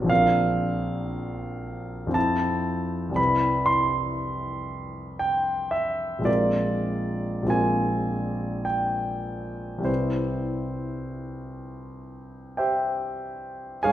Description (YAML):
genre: classical, impressionist solo piano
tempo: 41-60 BPM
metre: 3/4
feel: rubato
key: C major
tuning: A4 = 440 Hz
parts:
  - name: warm concert grand piano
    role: solo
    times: 0.0-13.9 s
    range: Bb1 to C6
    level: -24 LUFS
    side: equal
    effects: none
room: wet recital hall reverb, RT60 1.5 s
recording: heard from further back in the room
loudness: -23 LUFS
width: side -12 dB against mid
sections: 0.0-13.9 A section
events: none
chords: 0.1 Bbadd9; 2.2 Fmaj7; 3.2 Cmaj7; 6.3 Bb9; 9.9 Cmaj7